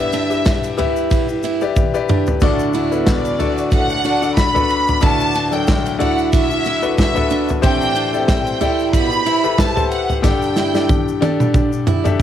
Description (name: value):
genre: piano-driven pop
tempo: 92 BPM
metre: 4/4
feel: swing 56% on 16ths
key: G major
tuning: A4 = 440 Hz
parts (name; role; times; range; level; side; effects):
- rich studio violin section; melody; 0.0-11.2 s; D5 to B5; -20 LUFS; equal; none
- clear concert grand piano; accompaniment; 0.0-12.2 s; D2 to E5; -20 LUFS; left 7 dB; cassette tape
- picked steel-string acoustic guitar; riff; 0.0-12.0 s; B3 to F#4; -23 LUFS; right 12 dB; cassette tape
- modern studio drum kit; drums; 0.1-12.2 s; kick drum, ride cymbal, snare drum, splash cymbal, toms; -18 LUFS; right 1 dB; none
- tube shaker; percussion; 0.1-12.2 s; none; -41 LUFS; left 11 dB; none
- mellow French horn section; second line; 2.4-9.5 s; A2 to E4; -24 LUFS; equal; cassette tape
room: light reverb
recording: home recording on cassette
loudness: -14 LUFS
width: side -10 dB against mid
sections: 0.0-12.2 A section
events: drum fill 1.8-2.4, 10.2-12.2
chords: 0.0 G6; 2.4 D; 7.6 Am7; 10.2 Gsus2